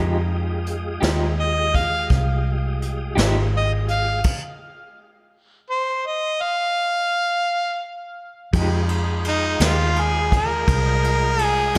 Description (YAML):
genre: slow blues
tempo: 56 BPM (dotted quarters)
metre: 12/8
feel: straight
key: F minor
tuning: A4 = 440 Hz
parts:
  - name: electric guitar through a small old amp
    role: accompaniment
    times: 0.0-11.8 s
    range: F3 to G4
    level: -30 LUFS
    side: equal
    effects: tremolo, slapback echo
  - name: tonewheel organ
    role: sustained chords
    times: 0.0-11.8 s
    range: Ab3 to G5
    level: -33 LUFS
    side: equal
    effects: slow rotary speaker, chorus vibrato
  - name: vintage muted fingered electric bass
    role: bass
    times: 0.0-11.8 s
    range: Ab1 to F2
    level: -24 LUFS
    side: equal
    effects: none
  - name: vintage brush drum kit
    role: drums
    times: 0.7-11.8 s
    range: crash cymbal, hi-hat, kick drum, ride cymbal, snare drum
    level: -26 LUFS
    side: equal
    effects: none
  - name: clear harmonica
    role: melody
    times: 1.4-11.8 s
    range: Eb4 to F5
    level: -24 LUFS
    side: equal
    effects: overdrive, slapback echo
room: moderate lush hall reverb, RT60 2.9 s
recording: big arena sound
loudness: -21 LUFS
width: mono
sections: 0.0-8.5 A section; 8.5-11.8 B section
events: stop 4.2-8.5; harmonica solo 8.5-11.8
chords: 0.0 Fm9